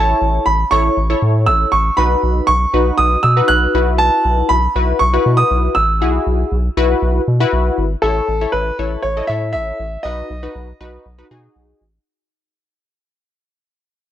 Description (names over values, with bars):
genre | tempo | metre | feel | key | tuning
synth-pop | 119 BPM | 4/4 | straight | E major | A4 = 436 Hz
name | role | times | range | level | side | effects
clear baby grand piano | melody | 0.0-11.5 s | A4 to F#6 | -16 LUFS | right 2 dB | analog delay
funky polysynth comp | accompaniment | 0.0-11.8 s | D#4 to D#5 | -19 LUFS | left 3 dB | chorus
round analog bass | bass | 0.0-12.0 s | G#1 to B2 | -17 LUFS | equal | none
room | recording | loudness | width
small room ambience | dry, gritty hardware recording | -13 LUFS | side -11 dB against mid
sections
0.0-8.0 A section; 8.0-12.1 B section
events
fade-out 8.0-12.1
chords
0.0 A; 2.0 B; 3.7 Esus2; 8.0 A; 10.0 B